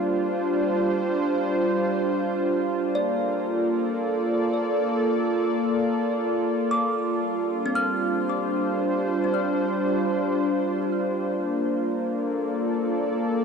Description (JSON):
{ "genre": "ambient", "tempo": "free time", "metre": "none", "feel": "none", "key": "Bb major", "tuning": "A4 = 436 Hz", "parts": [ { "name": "warm analog pad", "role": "sustained chords", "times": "0.0-13.4 s", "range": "G3 to D5", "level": "-23 LUFS", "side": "equal", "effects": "chorus" }, { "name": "kalimba", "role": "arpeggios", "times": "0.0-12.8 s", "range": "C4 to F6", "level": "-31 LUFS", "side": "left 1 dB", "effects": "ping-pong delay" } ], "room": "wet huge ambient reverb, RT60 6.9 s", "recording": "dreamy mix soaked in reverb", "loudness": "-22 LUFS", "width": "side -6 dB against mid", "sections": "0.0-13.4 A section", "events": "none", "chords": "0.0 G7sus4; 2.9 Bbmaj7; 7.1 G7sus4; 11.4 Bbmaj7" }